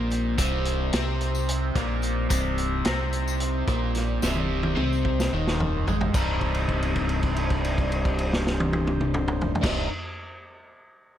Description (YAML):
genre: psychedelic rock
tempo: 219 BPM (eighths)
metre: 7/8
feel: straight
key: C minor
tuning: A4 = 439 Hz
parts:
  - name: combo organ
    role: sustained chords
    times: 0.0-9.9 s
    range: G3 to C5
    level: -36 LUFS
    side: right 4 dB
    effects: wide subtle chorus
  - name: overdriven electric guitar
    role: riff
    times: 0.0-9.9 s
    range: C2 to Eb4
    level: -27 LUFS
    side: left 1 dB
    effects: phaser
  - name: fingered electric bass with an envelope filter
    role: bass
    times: 0.0-9.9 s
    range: C1 to C2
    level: -28 LUFS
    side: equal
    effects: none
  - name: vintage drum kit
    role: drums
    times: 0.1-9.8 s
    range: crash cymbal, hi-hat, kick drum, snare drum, toms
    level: -28 LUFS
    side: equal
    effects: none
  - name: tambourine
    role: percussion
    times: 0.1-6.4 s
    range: none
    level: -39 LUFS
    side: left 7 dB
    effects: none
room: little or no reverb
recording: none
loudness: -23 LUFS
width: side -11 dB against mid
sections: 0.0-6.1 A section; 6.1-10.0 B section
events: drum fill 4.2-6.1; held note 6.1-9.6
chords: 0.0 Cm